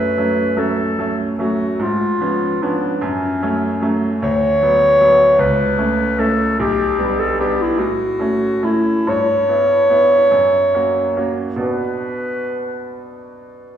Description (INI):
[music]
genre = classical, romantic duo for clarinet and grand piano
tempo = 45-52 BPM (dotted quarters)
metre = 6/8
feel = rubato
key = unclear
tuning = A4 = 443 Hz
[part]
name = warm clarinet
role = melody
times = 0.0-12.9 s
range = C#4 to C#5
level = -16 LUFS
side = left 1 dB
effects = none
[part]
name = bright concert grand piano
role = accompaniment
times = 0.0-13.8 s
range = B1 to F#4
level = -20 LUFS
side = right 2 dB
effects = none
[sound]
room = wet recital hall reverb, RT60 1.4 s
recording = heard from further back in the room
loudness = -14 LUFS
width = side -9 dB against mid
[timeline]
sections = 0.0-13.8 A section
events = none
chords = 0.0 F#m; 1.8 C#7/G#; 3.0 F#m; 4.2 Bm/D; 5.4 A/C#; 6.6 G/B; 7.8 F#m/A; 9.1 Em/G; 10.3 F#; 11.6 Bm